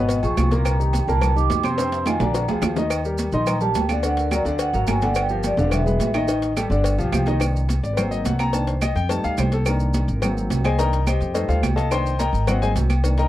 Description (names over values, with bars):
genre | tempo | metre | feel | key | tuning
Afro-Cuban jazz | 213 BPM | 4/4 | straight | G minor | A4 = 440 Hz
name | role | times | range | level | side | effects
vibraphone with medium mallets | melody | 0.0-6.3 s | A#4 to D6 | -25 LUFS | right 2 dB | none
warm concert grand piano | accompaniment | 0.0-13.3 s | Bb2 to C6 | -24 LUFS | left 2 dB | none
upright bass | bass | 0.0-13.3 s | E1 to F2 | -22 LUFS | equal | none
agogo bells and timbales | percussion | 0.1-13.2 s | none | -30 LUFS | right 7 dB | none
congas | percussion | 0.1-13.3 s | none | -29 LUFS | equal | none
cowbell and bongos | percussion | 0.1-13.3 s | none | -31 LUFS | left 6 dB | none
maracas | percussion | 0.1-13.3 s | none | -38 LUFS | right 8 dB | none
claves | percussion | 0.4-13.0 s | none | -31 LUFS | right 8 dB | none
room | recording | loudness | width
light reverb | dry, close 1970s-style studio recording | -18 LUFS | side -14 dB against mid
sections
0.0-7.4 A section; 7.4-13.3 A section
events
vibraphone solo 0.0-7.4; drum fill 1.8-2.9; grand piano solo 7.4-13.3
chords
0.0 C#9; 0.7 Cm9; 1.8 F5; 2.3 Bb7; 2.9 Ebmaj7; 4.0 Daug; 5.2 G5; 5.7 E7; 6.3 Ebmaj7#11; 6.8 G7; 7.4 Cm7; 8.0 Ab7; 8.5 Cm7; 9.1 F7; 9.7 Cm7; 10.2 Ab7; 10.8 Cm7; 11.4 F7; 11.9 Cm7; 12.5 Ab7